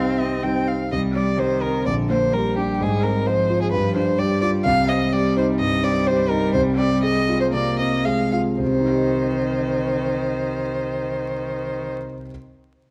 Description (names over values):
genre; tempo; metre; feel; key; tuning
quick classical-period movement for piano trio; 108-131 BPM; 4/4; rubato; C minor; A4 = 440 Hz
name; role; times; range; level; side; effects
rich violin; melody; 0.0-11.9 s; G4 to G5; -26 LUFS; equal; none
clear cello; second line; 0.0-11.9 s; D3 to C4; -29 LUFS; equal; none
dark concert grand piano; accompaniment; 0.0-12.3 s; Bb1 to Eb5; -24 LUFS; equal; none
room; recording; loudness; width
moderate recital hall reverb, RT60 1.4 s; close, detailed microphones, vinyl crackle; -21 LUFS; mono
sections
0.9-8.6 A section; 8.6-12.8 B section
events
slowing down 3.7-8.6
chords
0.0 Cm; 1.9 Gm/Bb; 2.8 Fm/Ab; 3.7 G5; 4.7 Cm; 6.5 Fm/C; 8.6 Cm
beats
0.44 | 0.92 1.39 1.86 2.33 | 2.80 3.27 3.73 4.19 | 4.66 5.12 5.59 6.07 | 6.55 7.04 7.54 8.06 | 8.60 9.13 9.65 10.17 | 10.69 11.22 11.75 12.28